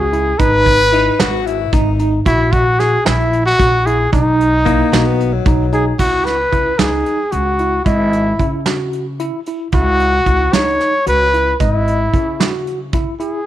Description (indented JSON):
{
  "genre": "progressive instrumental, band music in an uneven meter",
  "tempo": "225 BPM (eighths)",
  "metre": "7/8",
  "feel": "straight",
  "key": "C# minor from 6.0 s",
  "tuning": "A4 = 440 Hz",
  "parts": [
    { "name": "mellow trumpet", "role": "melody", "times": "0.0-13.5 s", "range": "D#4 to C#5", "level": "-15 LUFS", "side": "equal", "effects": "slapback echo" },
    { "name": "tine electric piano", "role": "arpeggios", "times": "0.0-13.4 s", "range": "D#4 to D#5", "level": "-21 LUFS", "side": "right 1 dB", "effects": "medium stereo tremolo" },
    { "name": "upright bass", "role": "bass", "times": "0.0-13.0 s", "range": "G#1 to C#3", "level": "-18 LUFS", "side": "equal", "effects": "none" },
    { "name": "soft brush drum kit", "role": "drums", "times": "0.1-13.3 s", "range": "crash cymbal, hi-hat, kick drum, snare drum", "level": "-18 LUFS", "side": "right 2 dB", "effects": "none" },
    { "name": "bright alto saxophone", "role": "second line", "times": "0.9-6.0 s", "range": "F#3 to F#4", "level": "-20 LUFS", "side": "left 10 dB", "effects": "none" }
  ],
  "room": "light reverb, small room reverb",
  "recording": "1960s-style stereo",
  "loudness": "-12 LUFS",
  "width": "side -12 dB against mid",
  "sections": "0.0-6.0 A section; 6.0-13.5 B section",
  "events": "none",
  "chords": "0.4 G#m7; 2.3 F#/A#; 4.1 B; 6.0 C#madd9"
}